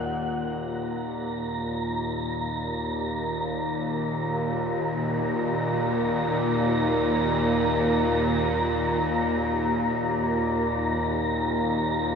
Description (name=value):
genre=dark ambient drone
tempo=free time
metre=none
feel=none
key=unclear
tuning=A4 = 439 Hz
part: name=bowed-like drone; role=drone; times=0.0-12.2 s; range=Eb2 to Bb2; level=-25 LUFS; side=equal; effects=built-in reverb
part: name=wind-like tuned noise texture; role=texture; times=0.0-12.2 s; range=Bb5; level=-30 LUFS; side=equal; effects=built-in reverb
room=wet spring reverb, RT60 2.3 s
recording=none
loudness=-23 LUFS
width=side -6 dB against mid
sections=0.1-12.2 A section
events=none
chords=0.1 Eb5